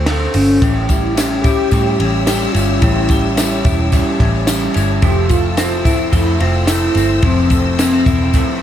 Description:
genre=jangly indie pop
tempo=109 BPM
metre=4/4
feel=straight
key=unclear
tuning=A4 = 442 Hz
part: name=warm velvety synth lead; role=melody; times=0.0-8.6 s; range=C4 to G4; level=-18 LUFS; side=left 1 dB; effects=chorus
part: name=electric guitar through a small old amp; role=accompaniment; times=0.0-8.6 s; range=A2 to F4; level=-23 LUFS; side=right 2 dB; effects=wide subtle chorus
part: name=electric guitar through a small old amp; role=arpeggios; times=0.0-8.6 s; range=A2 to F4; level=-21 LUFS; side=left 1 dB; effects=lush chorus, digital delay
part: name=vintage muted picked electric bass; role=bass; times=0.0-8.4 s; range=E1 to A2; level=-18 LUFS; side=equal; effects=none
part: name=compact cocktail drum kit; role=drums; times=0.1-8.5 s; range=hi-hat, kick drum, ride cymbal, snare drum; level=-17 LUFS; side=equal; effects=none
part: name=clear studio string section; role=sustained chords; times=0.6-8.6 s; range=F3 to E6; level=-26 LUFS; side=left 3 dB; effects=none
part: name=tambourine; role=percussion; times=0.6-8.5 s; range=none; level=-29 LUFS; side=left 5 dB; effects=none
room=light reverb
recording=none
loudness=-12 LUFS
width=side -10 dB against mid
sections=0.0-8.6 A section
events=none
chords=0.0 Dm7; 0.6 A7; 5.0 Fmaj7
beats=0.07 | 0.62 1.17 1.72 2.27 | 2.82 3.37 3.92 4.47 | 5.02 5.58 6.13 6.68 | 7.23 7.79 8.34

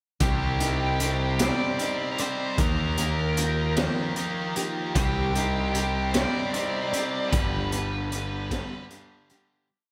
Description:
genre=quiet-loud alternative rock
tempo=51 BPM (dotted quarters)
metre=6/8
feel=straight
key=C minor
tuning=A4 = 440 Hz
part: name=nasal lead guitar with a parked wah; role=melody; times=0.2-8.8 s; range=G4 to D5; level=-34 LUFS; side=equal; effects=overdrive, slapback echo
part: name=fingerpicked plugged-in swing-style acoustic guitar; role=arpeggios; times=0.2-9.9 s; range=C3 to D5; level=-37 LUFS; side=equal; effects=slapback echo
part: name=distorted electric guitar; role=riff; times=0.2-9.7 s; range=G2 to Eb4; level=-33 LUFS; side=equal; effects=overdrive, slapback echo
part: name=fuzz picked electric bass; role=bass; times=0.2-8.6 s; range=G1 to Eb2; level=-30 LUFS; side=equal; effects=overdrive
part: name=raw garage drum kit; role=drums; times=0.2-9.5 s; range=hi-hat, kick drum, snare drum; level=-31 LUFS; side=equal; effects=none
room=moderate lush hall reverb, RT60 2.5 s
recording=big arena sound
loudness=-26 LUFS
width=mono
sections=0.2-9.7 verse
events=fade-out 7.3-9.7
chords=0.2 Cmadd9; 2.6 Ebadd9; 5.0 Cmadd9; 7.3 G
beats=| 0.21 1.40 | 2.58 3.77 | 4.95 6.14 | 7.33 8.51

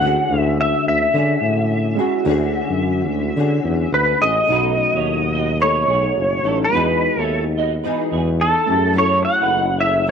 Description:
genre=indie pop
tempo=107 BPM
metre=4/4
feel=swing 60% on 16ths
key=unclear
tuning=A4 = 441 Hz
part: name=clean lap steel guitar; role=melody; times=0.0-10.1 s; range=A4 to F#5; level=-18 LUFS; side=equal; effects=ensemble chorus, slapback echo
part: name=nylon-string guitar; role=accompaniment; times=0.0-10.1 s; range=B2 to A4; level=-24 LUFS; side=left 12 dB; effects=ensemble chorus, warbly pitch drift
part: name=warm analog keys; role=accompaniment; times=0.0-10.1 s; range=G#3 to G#4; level=-27 LUFS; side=right 14 dB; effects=chorus
part: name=warm tuba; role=bass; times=0.0-10.1 s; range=F#1 to D3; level=-21 LUFS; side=equal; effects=none
part: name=electric guitar through a small old amp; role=second line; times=4.5-10.1 s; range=B3 to D#5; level=-27 LUFS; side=right 10 dB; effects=ensemble chorus, slapback echo
room=light reverb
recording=1960s-style stereo with parts hard left and right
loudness=-16 LUFS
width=side -7 dB against mid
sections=0.0-4.5 A section; 4.5-10.1 B section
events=none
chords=0.0 Dmaj9#11; 4.5 B7; 6.7 Emaj7; 8.7 F#m7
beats=| 0.02 0.58 1.14 1.70 | 2.26 2.82 3.38 3.93 | 4.49 5.05 5.61 6.17 | 6.73 7.29 7.84 8.40 | 8.96 9.52 10.08

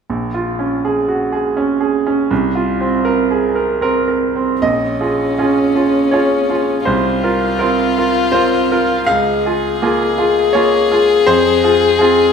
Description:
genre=neoclassical piano and strings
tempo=81 BPM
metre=3/4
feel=rubato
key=Bb minor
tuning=A4 = 440 Hz
part: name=bright grand piano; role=accompaniment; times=0.1-12.3 s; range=Bb1 to F5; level=-14 LUFS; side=right 2 dB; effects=none
part: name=rich violin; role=melody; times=4.6-12.3 s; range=Db4 to Ab4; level=-16 LUFS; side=left 6 dB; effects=none
room=wet lush hall reverb, RT60 1.7 s, small room ambience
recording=dreamy mix soaked in reverb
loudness=-13 LUFS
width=side -6 dB against mid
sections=0.1-4.6 A section; 4.6-12.3 B section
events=none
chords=0.1 Bbm7; 2.3 Fsus4/C; 4.6 Bbm7; 6.9 Fsus4/C; 9.1 Bbm7/Db; 11.3 Fm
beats=| 0.09 0.84 1.57 | 2.31 3.05 3.81 | 4.62 5.38 6.12 | 6.86 7.60 8.33 | 9.09 9.82 10.54 | 11.27 12.00

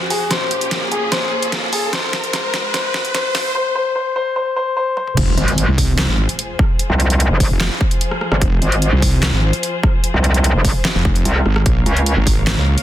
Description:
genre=heavy wobble dubstep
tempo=148 BPM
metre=4/4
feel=half-time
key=F minor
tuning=A4 = 440 Hz
part: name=dark baby grand piano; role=melody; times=0.0-5.2 s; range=Ab4 to C5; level=-20 LUFS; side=left 3 dB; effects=ping-pong delay
part: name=bright studio string section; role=sustained chords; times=0.0-12.8 s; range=F2 to F5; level=-26 LUFS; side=left 2 dB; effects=sidechain pumping, low-pass filter
part: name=riser and impact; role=sound effects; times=0.0-6.8 s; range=none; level=-24 LUFS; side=right 1 dB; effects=none
part: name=dubstep drum kit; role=drums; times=0.1-12.8 s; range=crash cymbal, handclaps, hi-hat, rim click, snare drum, toms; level=-21 LUFS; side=equal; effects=overdrive
part: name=wobble bass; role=bass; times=5.2-12.8 s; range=F1 to Db2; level=-16 LUFS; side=equal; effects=chorus, overdrive
part: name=electronic kick drum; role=drums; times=5.2-12.3 s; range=none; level=-17 LUFS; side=equal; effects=overdrive
part: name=metallic wobble bass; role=bass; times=5.4-12.2 s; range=F1 to Db2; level=-15 LUFS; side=equal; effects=chorus, overdrive
room=light reverb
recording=dense, heavily limited modern master, high-pass filter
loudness=-14 LUFS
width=side -12 dB against mid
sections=0.0-5.2 A section; 5.2-12.8 B section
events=build-up 0.0-5.2; drum fill 0.0-3.6, 5.0; riser 0.0-3.6; filter sweep 0.0-5.2; drop 5.2-12.8; impact 5.2-6.8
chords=0.3 Bbm; 1.9 Fm/Ab; 3.6 N.C.; 5.2 Fm; 11.7 Bbm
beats=| 0.31 0.71 1.12 1.52 | 1.93 2.33 2.74 3.15 | 3.55 3.96 4.36 4.77 | 5.17 5.58 5.98 6.39 | 6.79 7.20 7.61 8.01 | 8.42 8.82 9.23 9.63 | 10.04 10.44 10.85 11.25 | 11.66 12.06 12.47

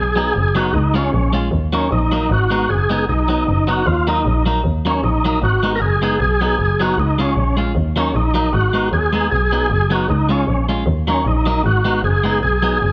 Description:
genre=ska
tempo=154 BPM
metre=4/4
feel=swing 56% on 8ths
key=Eb minor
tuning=A4 = 440 Hz
part: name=overdriven tonewheel organ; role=melody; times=0.0-12.9 s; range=Db4 to Bb4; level=-21 LUFS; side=equal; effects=chorus vibrato, fast rotary speaker, slapback echo
part: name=rich double bass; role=bass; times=0.0-12.9 s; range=F#1 to Eb2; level=-21 LUFS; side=equal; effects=none
part: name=clean electric guitar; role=accompaniment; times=0.2-12.8 s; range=F#3 to F4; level=-24 LUFS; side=equal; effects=none
room=light reverb, studio reverb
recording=none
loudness=-17 LUFS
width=mono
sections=0.0-4.6 A section; 4.6-12.9 A section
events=none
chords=0.0 B; 0.7 Db; 1.5 Ebm; 2.3 Abm; 3.1 B; 3.9 Ebm; 5.4 Abm; 6.2 B; 7.0 Db; 7.8 Ebm; 8.5 Abm; 9.3 B; 10.1 Db; 10.9 Ebm; 11.6 Abm; 12.4 B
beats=0.35 0.74 1.13 | 1.52 1.91 2.30 2.69 | 3.08 3.47 3.86 4.25 | 4.63 5.02 5.41 5.80 | 6.19 6.58 6.97 7.36 | 7.75 8.14 8.53 8.92 | 9.31 9.70 10.09 10.47 | 10.86 11.25 11.64 12.03 | 12.42 12.81

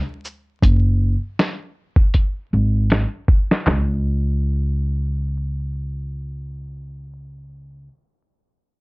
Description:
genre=lo-fi hip hop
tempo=79 BPM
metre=4/4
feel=swing 57% on 16ths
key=unclear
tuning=A4 = 440 Hz
part: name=lo-fi sampler-style drum kit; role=drums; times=0.2-3.9 s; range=handclaps, hi-hat, kick drum, shaker, snare drum, toms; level=-16 LUFS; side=equal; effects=none
part: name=upright bass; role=bass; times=0.6-7.9 s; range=F#1 to C#2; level=-20 LUFS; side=equal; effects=none
room=little or no reverb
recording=vinyl crackle, low-pass filter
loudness=-18 LUFS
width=side -29 dB against mid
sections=0.0-3.7 A section; 3.7-6.7 B section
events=drum fill 2.1-3.7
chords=none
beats=| 0.62 1.38 2.14 2.90 | 3.66 4.42 5.18 5.94

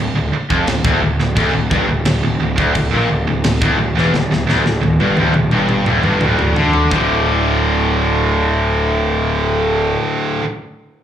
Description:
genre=heavy metal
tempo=86 BPM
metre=4/4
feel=straight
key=unclear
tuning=A4 = 440 Hz
part: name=distorted electric guitar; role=riff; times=0.0-10.4 s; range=D2 to D3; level=-20 LUFS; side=left 7 dB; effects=distortion, slapback echo
part: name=heavy high-gain guitar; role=riff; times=0.0-10.4 s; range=D2 to D3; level=-19 LUFS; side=right 7 dB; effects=distortion, slapback echo
part: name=raw garage guitar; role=riff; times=0.0-10.4 s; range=D2 to D3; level=-22 LUFS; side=left 1 dB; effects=overdrive, slapback echo
part: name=fuzz picked electric bass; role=bass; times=0.0-10.0 s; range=D1 to D2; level=-18 LUFS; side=equal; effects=overdrive
part: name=tight metal drum kit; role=drums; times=0.5-7.1 s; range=crash cymbal, kick drum, snare drum, toms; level=-21 LUFS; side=equal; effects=none
room=little or no reverb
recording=live gig heard through the venue's PA, club reverb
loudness=-13 LUFS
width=side -10 dB against mid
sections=0.0-6.9 A section; 6.9-9.7 B section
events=drum fill 4.1-6.9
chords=0.0 N.C.; 6.9 D5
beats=0.68 | 1.37 2.06 2.76 3.45 | 4.15 4.84 5.54 6.23 | 6.93 7.62 8.32 9.02

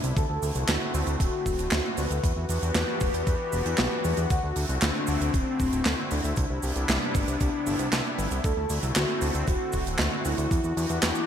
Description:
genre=synthwave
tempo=116 BPM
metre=4/4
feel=straight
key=unclear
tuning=A4 = 440 Hz
part: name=warm velvety synth lead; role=melody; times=0.0-11.3 s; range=C4 to B4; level=-31 LUFS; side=left 2 dB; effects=chorus, ping-pong delay
part: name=warm analog pad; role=sustained chords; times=0.0-11.3 s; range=C3 to G4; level=-32 LUFS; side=left 1 dB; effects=chorus, sidechain pumping
part: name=fat analog bass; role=bass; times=0.0-11.1 s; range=D1 to E2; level=-29 LUFS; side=equal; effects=tube saturation
part: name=tight metal drum kit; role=drums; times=0.0-11.3 s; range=cabasa, handclaps, hi-hat, snare drum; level=-30 LUFS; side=right 1 dB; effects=gated reverb
part: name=electronic kick drum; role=drums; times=0.2-10.6 s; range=none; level=-27 LUFS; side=equal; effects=none
room=moderate lush hall reverb, RT60 2.0 s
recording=bright 1980s-style digital production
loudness=-24 LUFS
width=side -9 dB against mid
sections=0.0-11.3 A section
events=none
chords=0.2 D7; 2.2 Em7; 4.3 D7; 6.4 Cmaj7; 8.4 D7; 10.5 Em7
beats=| 0.17 0.68 1.20 1.72 | 2.23 2.75 3.27 3.79 | 4.30 4.82 5.34 5.86 | 6.37 6.89 7.41 7.92 | 8.44 8.96 9.48 9.99 | 10.51 11.03

